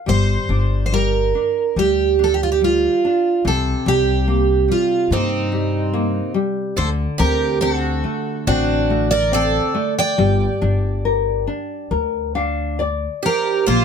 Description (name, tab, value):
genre	fado-style ballad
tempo	71 BPM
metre	4/4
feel	rubato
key	G minor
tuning	A4 = 439 Hz
part	nylon-string guitar	accompaniment	0.0-13.8 s	C3 to F5	-22 LUFS	left 3 dB	none
part	picked twelve-string acoustic guitar	melody	0.1-13.8 s	Eb4 to G5	-19 LUFS	right 4 dB	none
part	upright bass	bass	0.1-13.8 s	G1 to G2	-21 LUFS	left 1 dB	none
part	picked twelve-string acoustic guitar	second line	5.1-13.8 s	C4 to D5	-23 LUFS	right 3 dB	none
room	light reverb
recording	none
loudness	-16 LUFS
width	side -7 dB against mid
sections	0.1-13.7 A section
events	nylon-string guitar fill 11.9-13.7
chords	0.1 Gm7; 3.5 Cm7; 6.8 D7; 10.2 Gm